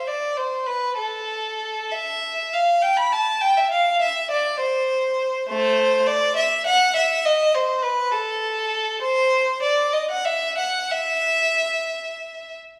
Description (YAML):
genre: classical, baroque-style suite movement for unaccompanied violin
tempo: 60-69 BPM (dotted quarters)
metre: 6/8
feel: rubato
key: A minor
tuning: A4 = 439 Hz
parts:
  - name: rich violin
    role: solo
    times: 0.0-12.6 s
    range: A3 to B5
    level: -22 LUFS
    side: equal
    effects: none
room: wet recital hall reverb, RT60 1.5 s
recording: recorded in a church or concert hall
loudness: -21 LUFS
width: mono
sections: 0.0-12.8 A section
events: none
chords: none